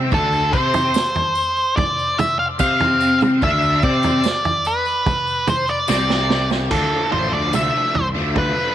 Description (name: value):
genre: psychedelic rock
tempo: 73 BPM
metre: 4/4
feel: straight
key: unclear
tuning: A4 = 440 Hz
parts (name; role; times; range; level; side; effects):
- raw garage guitar; riff; 0.0-8.7 s; C3 to C5; -22 LUFS; left 1 dB; overdrive, rotary speaker
- fuzz fingered electric bass; bass; 0.0-8.5 s; A1 to C3; -22 LUFS; left 1 dB; overdrive
- octave-fuzz lead guitar; melody; 0.1-8.7 s; A4 to F5; -19 LUFS; equal; distortion, tape echo
- vintage drum kit; drums; 0.1-8.6 s; crash cymbal, kick drum, snare drum, toms; -23 LUFS; right 3 dB; none
- tambourine; percussion; 0.1-7.7 s; none; -37 LUFS; left 19 dB; none
room: light reverb, studio ambience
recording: 1960s-style stereo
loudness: -16 LUFS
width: side -11 dB against mid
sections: 0.0-6.7 A section; 6.7-8.7 B section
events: drum fill 5.9-6.7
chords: 0.0 Csus2; 6.7 Dm